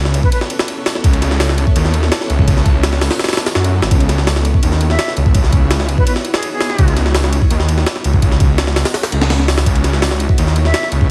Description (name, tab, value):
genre	drum and bass, jungle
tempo	167 BPM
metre	4/4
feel	straight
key	C# minor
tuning	A4 = 441 Hz
part	detuned saw bass	bass	0.0-11.1 s	G#1 to F#2	-17 LUFS	equal	none
part	jungle sampler-style drum kit	drums	0.1-11.1 s	hi-hat, kick drum, ride cymbal, snare drum	-17 LUFS	equal	none
part	silver concert flute	melody	0.2-0.4, 4.9-7.0, 10.7-10.9 s	G#4 to E5	-26 LUFS	equal	dub echo
room	little or no reverb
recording	vinyl crackle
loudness	-14 LUFS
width	mono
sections	0.0-11.1 A section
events	none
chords	0.0 Aadd9/C#; 3.9 C#m11; 9.7 Aadd9/C#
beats	0.32 0.68 | 1.04 1.40 1.76 2.12 | 2.48 2.83 3.19 3.55 | 3.91 4.27 4.63 4.99 | 5.35 5.71 6.07 6.43 | 6.79 7.14 7.50 7.86 | 8.22 8.58 8.94 9.30 | 9.66 10.02 10.38 10.74